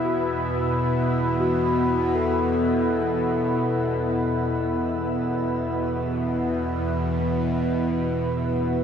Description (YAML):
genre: dark ambient drone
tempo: free time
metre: none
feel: none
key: unclear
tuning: A4 = 441 Hz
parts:
  - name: deep dark ambient pad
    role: sustained chords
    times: 0.0-8.8 s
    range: B3 to E5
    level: -24 LUFS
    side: equal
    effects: chorus, built-in reverb, shimmer reverb
  - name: bowed-like drone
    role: drone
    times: 0.0-8.8 s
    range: E2 to B2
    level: -26 LUFS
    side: equal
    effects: built-in reverb, phaser
  - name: quartz singing bowl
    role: texture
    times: 0.0-8.8 s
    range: F#4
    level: -38 LUFS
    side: left 1 dB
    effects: none
  - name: gamelan-type bronze metallophone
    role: arpeggios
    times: 1.4-8.8 s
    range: B3 to A4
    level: -29 LUFS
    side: left 2 dB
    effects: ping-pong delay, shimmer reverb
room: wet cathedral reverb, RT60 5.4 s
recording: none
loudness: -21 LUFS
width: side -8 dB against mid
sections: 0.0-8.8 A section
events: none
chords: 0.0 E5